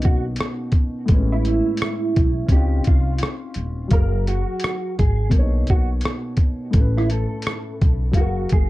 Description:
lo-fi hip hop; 85 BPM; 4/4; swing 62% on 16ths; A4 = 440 Hz
mellow electric guitar; melody; 0.0-8.7 s; E4 to A#4; -26 LUFS; right 3 dB; ensemble chorus, low-pass filter, tape echo
dark upright piano; accompaniment; 0.0-8.7 s; A2 to E#5; -27 LUFS; left 2 dB; cassette tape, low-pass filter, plate reverb
lo-fi sampler-style drum kit; drums; 0.0-8.7 s; hi-hat, kick drum, rim click; -18 LUFS; equal
upright bass; bass; 0.1-8.7 s; D#1 to C#2; -22 LUFS; equal
light reverb; dark, warm production; -18 LUFS; side -17 dB against mid
0.0-8.7 A section
0.0 Bmaj9; 1.1 Amaj9; 2.5 C#maj9; 3.9 F#maj9; 5.3 Bmaj9; 6.7 Aadd9; 8.2 F#maj9

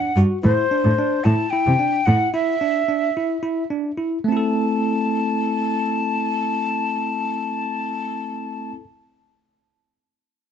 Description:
progressive instrumental, progressive; 221 BPM (eighths); 7/8; straight; A dorian; A4 = 440 Hz
breathy mellow jazz flute; melody; 0.0-8.7 s; C5 to A5; -22 LUFS; left 2 dB; plate reverb
bell-like tine electric piano; arpeggios; 0.0-8.8 s; A3 to A4; -23 LUFS; right 2 dB; medium stereo tremolo, plate reverb
muted cello; bass; 0.2-2.2 s; G2 to C3; -18 LUFS; equal
light reverb; dark, warm production, nothing above 7.9 kHz; -19 LUFS; side -8 dB against mid
0.0-4.2 A section; 4.2-8.0 B section
0.4 Am (rootless); 4.2 Am

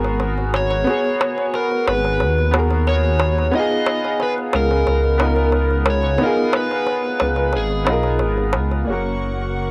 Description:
trip hop; 90 BPM; 4/4; straight; A4 = 439 Hz
clear upright piano; accompaniment; 0.0-9.7 s; A#3 to A#4; -24 LUFS; equal; harmonic tremolo, cassette tape
dark detuned saw bass; bass; 0.0-9.7 s; F#1 to D#2; -22 LUFS; equal; transformer saturation
darbuka; percussion; 0.0-8.8 s; -26 LUFS; equal
overdriven slide guitar; melody; 0.6-8.5 s; G#4 to D#5; -24 LUFS; equal; tape echo
rich studio string section; sustained chords; 8.9-9.7 s; A#4 to C#6; -32 LUFS; equal; cassette tape
light reverb; home recording on cassette; -19 LUFS; mono
0.0-8.9 A section
0.0 G#m9; 3.5 C#13; 8.9 F#

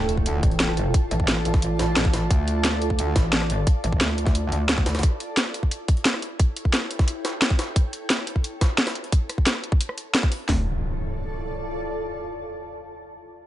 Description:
dark technical drum and bass; 176 BPM; 4/4; straight; D harmonic minor; A4 = 439 Hz
metallic wobble bass; bass; 0.0-5.0, 10.5-10.6 s; A1 to D2; -24 LUFS; equal; chorus, overdrive, sidechain pumping
drum and bass drum kit; drums; 0.0-10.4 s; hi-hat, rim click, snare drum; -23 LUFS; equal
impact; sound effects; 0.0-0.9, 10.5-11.9 s; -30 LUFS; equal
granular cloud pad; texture; 0.0-11.8 s; E4 to A5; -31 LUFS; right 1 dB; built-in reverb, sidechain pumping
jungle sampler-style drum kit; drums; 0.1-10.4 s; hi-hat, snare drum; -32 LUFS; equal; high-pass filter on snare, high-pass filter on hats, high-pass filter on room
drum and bass drum kit; drums; 0.2-10.6 s; hi-hat, kick drum, snare drum; -20 LUFS; equal
digital ambience; nothing above 10.9 kHz; -21 LUFS; side -13 dB against mid
0.0-10.5 A section; 10.5-11.9 B section
fade-out on ambient pad 0.0-10.5; impact 0.0-0.9
0.0 Dm; 5.0 A7; 10.5 Dm

